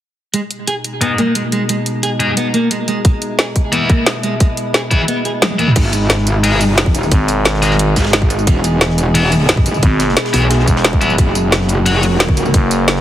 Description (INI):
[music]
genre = dark technical drum and bass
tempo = 177 BPM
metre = 4/4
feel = straight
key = G# minor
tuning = A4 = 436 Hz
[part]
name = metallic inharmonic drone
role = sustained chords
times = 0.7-13.0 s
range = B2 to G#4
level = -21 LUFS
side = equal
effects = chorus, built-in reverb, sidechain pumping
[part]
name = clean electric guitar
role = arpeggios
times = 0.3-5.7 s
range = G#3 to G#4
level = -19 LUFS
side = right 1 dB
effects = sidechain pumping, low-pass filter, tape echo
[part]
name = drum and bass drum kit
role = drums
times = 0.3-12.9 s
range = crash cymbal, hi-hat, snare drum, tambourine, toms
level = -16 LUFS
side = equal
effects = overdrive
[part]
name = scooped high-gain guitar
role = stabs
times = 1.0-12.0 s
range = E3 to F#5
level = -20 LUFS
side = left 2 dB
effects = distortion, low-pass filter, tape echo
[part]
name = electronic kick drum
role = drums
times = 3.0-12.6 s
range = none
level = -13 LUFS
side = equal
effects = none
[part]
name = metallic wobble bass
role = bass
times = 5.8-12.5 s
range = E1 to B1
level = -15 LUFS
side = equal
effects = distortion, chorus, overdrive
[part]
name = warm soul drum kit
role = drums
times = 5.8-13.0 s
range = hi-hat, ride cymbal, snare drum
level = -27 LUFS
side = right 1 dB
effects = high-pass filter on cymbals, high-pass filter on hats, high-pass filter on snare, high-pass filter on room
[part]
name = growling FM bass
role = bass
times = 7.1-13.0 s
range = E1 to G#1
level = -15 LUFS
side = equal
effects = none
[sound]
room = light reverb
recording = heavily compressed radio sound, multiband compression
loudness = -12 LUFS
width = side -12 dB against mid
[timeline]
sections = 0.3-5.8 A section; 5.8-13.0 B section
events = filter sweep on synth drone 0.3-5.8; filter sweep on distorted electric guitar 0.3-5.8; kick drops out 5.1-5.8; drum fill 5.4-5.8; drop 5.8-13.0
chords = 0.3 G#m; 3.0 E; 5.8 G#m; 8.5 E; 11.2 F#